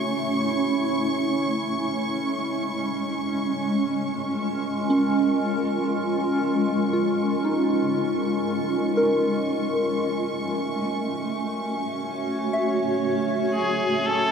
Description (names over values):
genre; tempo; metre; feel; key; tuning
ambient; 59 BPM; 4/4; straight; unclear; A4 = 440 Hz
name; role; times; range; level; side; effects
granular cloud pad; sustained chords; 0.0-14.3 s; Ab3 to Db5; -24 LUFS; right 1 dB; built-in reverb
soft synth bell; arpeggios; 0.0-14.3 s; Db4 to Fb5; -27 LUFS; equal; chorus, phaser, diffuse ambient delay
rich chamber violin section; texture; 0.0-14.3 s; Db6; -34 LUFS; equal; none
bright electric violin; melody; 13.5-14.3 s; Ab4 to A4; -23 LUFS; equal; none
room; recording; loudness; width
wet huge ambient reverb, RT60 7.7 s; none; -22 LUFS; side -6 dB against mid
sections
0.0-14.3 A section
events
fade-out on violin section 0.0-14.3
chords
0.0 A; 1.9 Bbm7; 5.9 Db6; 10.0 Gbm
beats
0.83 | 1.85 2.87 3.88 4.90 | 5.92 6.94 7.95 8.97 | 9.99 11.00 12.02 13.04 | 14.05